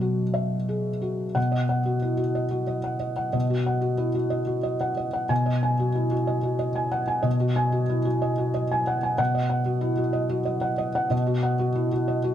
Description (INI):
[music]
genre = neoclassical minimalist piano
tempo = 92 BPM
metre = 3/4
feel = rubato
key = B major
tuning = A4 = 444 Hz
[part]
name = felt-muted upright piano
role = solo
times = 0.0-12.3 s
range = B2 to G#5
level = -22 LUFS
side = equal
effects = none
[sound]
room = light reverb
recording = dark, warm production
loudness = -23 LUFS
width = side -10 dB against mid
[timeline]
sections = 0.0-1.4 A section; 1.4-12.3 B section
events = none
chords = 0.0 Eadd9/B; 1.4 B; 5.3 G#m7/B; 9.2 B